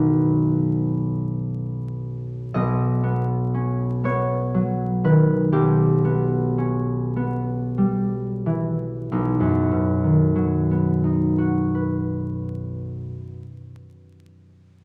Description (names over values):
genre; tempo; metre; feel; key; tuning
classical, solo harp piece; 28-41 BPM (dotted quarters); 6/8; rubato; B major; A4 = 439 Hz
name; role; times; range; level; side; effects
concert harp; solo; 0.0-14.2 s; B1 to D#5; -22 LUFS; equal; none
room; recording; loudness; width
wet recital hall reverb, RT60 1.4 s; vinyl crackle; -22 LUFS; mono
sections
0.0-2.5 A section; 2.5-9.1 B section; 9.1-12.7 C section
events
slowing down 1.0-9.1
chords
0.0 B; 5.5 Em/B; 9.1 B